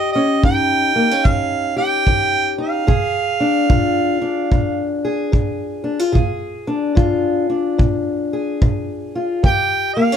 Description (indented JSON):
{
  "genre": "acoustic country blues, solo or duo",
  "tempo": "73 BPM",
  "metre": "4/4",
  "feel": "swing 64% on 8ths",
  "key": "Bb mixolydian",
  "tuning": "A4 = 440 Hz",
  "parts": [
    { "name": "mellow harmonica", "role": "melody", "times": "0.0-10.2 s", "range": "Eb5 to G5", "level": "-18 LUFS", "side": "right 5 dB", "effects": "none" },
    { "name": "fingerpicked old ladder-braced acoustic guitar", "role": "accompaniment", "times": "0.0-10.2 s", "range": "Bb2 to Ab4", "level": "-19 LUFS", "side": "left 2 dB", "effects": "none" },
    { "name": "kick drum", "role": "drums", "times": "0.4-9.7 s", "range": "none", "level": "-17 LUFS", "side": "equal", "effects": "none" }
  ],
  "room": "light reverb",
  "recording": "none",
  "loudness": "-15 LUFS",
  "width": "side -8 dB against mid",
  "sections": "0.0-10.2 A section",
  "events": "none",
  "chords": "0.0 Eb7; 2.9 Bb7; 9.4 Eb",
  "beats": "0.42 1.24 2.06 | 2.88 3.70 4.52 5.34 | 6.16 6.98 7.80 8.62 | 9.45"
}